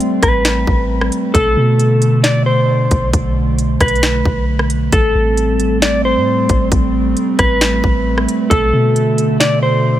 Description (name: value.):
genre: hip hop, atmospheric cloud-rap.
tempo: 134 BPM.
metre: 4/4.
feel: half-time.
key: A minor.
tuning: A4 = 436 Hz.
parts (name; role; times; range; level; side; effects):
dark analog pad; sustained chords; 0.0-10.0 s; B2 to C4; -18 LUFS; right 1 dB; chorus, sidechain pumping.
trap drum kit; drums; 0.0-9.5 s; hi-hat, kick drum, rim click, snare drum; -16 LUFS; equal; none.
mellow electric guitar; melody; 0.2-10.0 s; A4 to D5; -17 LUFS; equal; tape echo.
soft 808-style bass; bass; 0.2-10.0 s; A1 to B2; -17 LUFS; equal; none.
room: digital ambience.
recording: none.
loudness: -12 LUFS.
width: side -12 dB against mid.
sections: 0.0-10.0 A section.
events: none.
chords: 0.0 Am7; 1.3 Bm7; 4.9 Am7; 8.5 Bm7.